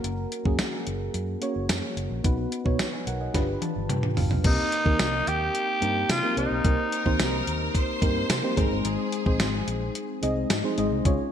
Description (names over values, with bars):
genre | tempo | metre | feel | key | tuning
1980s-style pop | 109 BPM | 4/4 | straight | F# major | A4 = 440 Hz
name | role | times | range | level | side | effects
mellow FM electric piano | accompaniment | 0.0-11.3 s | Ab3 to A#5 | -28 LUFS | equal | chorus
vintage muted fingered electric bass | bass | 0.0-11.2 s | F#1 to C3 | -31 LUFS | equal | none
clean 12-bit digital drum machine | drums | 0.0-11.2 s | crash cymbal, hi-hat, kick drum, snare drum, tambourine, toms | -26 LUFS | equal | gated reverb
breathy tenor saxophone | melody | 4.5-7.4 s | Eb4 to G4 | -27 LUFS | equal | ping-pong delay
clear studio violin section | second line | 6.9-10.0 s | Ab4 to C5 | -33 LUFS | right 1 dB | ping-pong delay
room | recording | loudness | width
moderate lush hall reverb, RT60 2.2 s | bright 1980s-style digital production | -23 LUFS | side -9 dB against mid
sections
0.0-4.4 A section; 4.4-11.3 B section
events
drum fill 3.3-4.4; FM electric piano fill 3.3-4.4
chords
0.0 F#; 2.2 B; 3.3 G7; 4.4 Cm7; 8.6 Ab